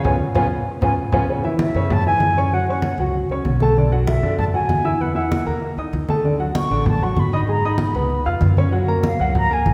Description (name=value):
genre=Afro-Cuban jazz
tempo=194 BPM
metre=4/4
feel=straight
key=unclear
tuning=A4 = 438 Hz
part: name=mellow concert flute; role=melody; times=0.0-9.7 s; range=E5 to C#6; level=-26 LUFS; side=equal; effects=none
part: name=warm upright piano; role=accompaniment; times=0.0-9.7 s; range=C#3 to E#6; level=-24 LUFS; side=equal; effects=none
part: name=upright bass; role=bass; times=0.0-9.7 s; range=G#1 to F#2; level=-24 LUFS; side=equal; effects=none
part: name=congas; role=percussion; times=0.0-9.7 s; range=none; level=-25 LUFS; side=equal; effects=none
room=wet concert hall reverb, RT60 1.9 s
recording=recorded in a church or concert hall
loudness=-19 LUFS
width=mono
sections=0.0-1.3 A section; 1.3-9.7 B section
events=band accent 0.0-1.3; drum fill 0.8-1.3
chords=0.0 Db7; 1.3 F#sus2; 2.5 F#5; 3.8 Bmadd11; 5.0 E5; 5.6 D#5; 6.2 Dmaj7; 7.5 G#m; 8.1 C#7; 8.7 F#maj9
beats=| 0.05 0.36 0.67 0.98 | 1.29 1.60 1.91 2.21 | 2.52 2.83 3.14 3.45 | 3.76 4.07 4.38 4.69 | 5.00 5.31 5.62 5.93 | 6.24 6.55 6.86 7.17 | 7.48 7.79 8.10 8.41 | 8.72 9.04 9.35 9.66